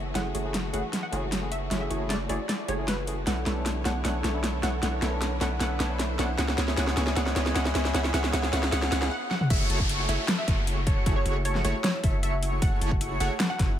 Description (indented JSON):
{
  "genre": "future bass",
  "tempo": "154 BPM",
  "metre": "4/4",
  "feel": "half-time",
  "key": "F# minor",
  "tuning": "A4 = 439 Hz",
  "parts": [
    { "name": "wide unison pluck", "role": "melody", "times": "0.0-13.7 s", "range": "B4 to F#5", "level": "-35 LUFS", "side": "right 1 dB", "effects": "sidechain pumping, ping-pong delay" },
    { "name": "bright studio string section", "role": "sustained chords", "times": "0.0-9.1 s", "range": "C#3 to C#5", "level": "-41 LUFS", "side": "equal", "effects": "none" },
    { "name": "supersaw stab", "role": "riff", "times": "0.0-13.8 s", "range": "A3 to C#5", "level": "-33 LUFS", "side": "right 2 dB", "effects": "sidechain pumping, low-pass filter" },
    { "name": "long sustained 808-style bass", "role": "bass", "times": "0.0-13.8 s", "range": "F#1 to C#2", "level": "-30 LUFS", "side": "equal", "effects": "sidechain pumping" },
    { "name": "riser and downlifter", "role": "sound effects", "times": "0.1-12.6 s", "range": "none", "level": "-38 LUFS", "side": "equal", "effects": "none" },
    { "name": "barky tine electric piano", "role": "accompaniment", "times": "0.1-9.1 s", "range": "A3 to A4", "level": "-37 LUFS", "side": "left 3 dB", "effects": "overdrive, sidechain pumping, ping-pong delay" },
    { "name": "dubstep drum kit", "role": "drums", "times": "0.2-13.7 s", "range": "crash cymbal, hi-hat, snare drum, toms", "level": "-30 LUFS", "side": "equal", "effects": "none" },
    { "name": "airy dreamy lead", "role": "arpeggios", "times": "9.5-13.8 s", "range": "C#6", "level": "-38 LUFS", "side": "equal", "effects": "chorus, sidechain pumping" },
    { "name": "concert harp", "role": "arpeggios", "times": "9.5-13.8 s", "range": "E4 to A4", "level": "-39 LUFS", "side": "left 8 dB", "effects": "sidechain pumping, ping-pong delay" },
    { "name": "electronic kick drum", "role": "drums", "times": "9.5-13.7 s", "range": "none", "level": "-26 LUFS", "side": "equal", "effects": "none" }
  ],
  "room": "light reverb",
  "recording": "none",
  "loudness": "-24 LUFS",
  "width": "side -10 dB against mid",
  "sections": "0.0-9.5 A section; 9.5-13.8 B section",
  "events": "build-up 0.0-9.5; drum fill 0.0-9.1, 9.3; filter sweep on supersaw synth 0.0-9.5; break 9.1-9.5; drop 9.5-13.8",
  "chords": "0.0 F#m9; 3.3 Bm11; 6.4 C#m7; 9.5 F#m9"
}